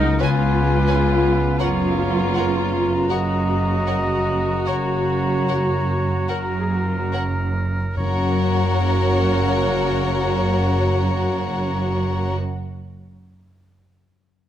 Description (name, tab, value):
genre	classical, slow romantic movement for symphony orchestra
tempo	35-46 BPM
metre	4/4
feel	rubato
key	F# major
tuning	A4 = 440 Hz
part	clear oboe	second line	0.0-12.4 s	A#4 to D#5	-29 LUFS	right 1 dB	none
part	mellow clarinet	second line	0.0-12.4 s	C#4 to F#4	-33 LUFS	left 1 dB	none
part	silver concert flute	second line	0.0-12.4 s	F#5 to A#5	-29 LUFS	left 4 dB	none
part	rich studio viola section	accompaniment	0.0-12.4 s	D#4 to G#4	-27 LUFS	right 1 dB	none
part	clear trombone section	sustained chords	0.0-12.4 s	C#3 to B3	-30 LUFS	right 5 dB	none
part	mellow French horn section	sustained chords	0.0-12.4 s	D#4 to F#4	-28 LUFS	left 3 dB	none
part	concert harp	arpeggios	0.0-12.6 s	F#2 to C#6	-28 LUFS	left 6 dB	none
part	rich symphonic cello section	bass	0.0-12.4 s	C#2 to F#2	-25 LUFS	right 2 dB	none
part	rich symphonic double bass section	bass	0.0-12.4 s	F#1 to C#2	-24 LUFS	right 2 dB	none
part	rich chamber violin section	melody	0.2-12.4 s	F#5 to G#5	-32 LUFS	left 5 dB	none
part	clear chamber violin section	second line	0.2-12.3 s	A#4 to C#5	-28 LUFS	left 4 dB	none
part	timpani	percussion	8.0-12.4 s	F#2	-28 LUFS	equal	none
room	moderate scoring stage reverb, RT60 1.5 s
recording	close, detailed microphones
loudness	-18 LUFS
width	side -10 dB against mid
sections	0.0-8.0 A section; 8.0-14.5 B section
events	slowing down 0.0-8.0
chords	0.2 C#7; 1.6 F#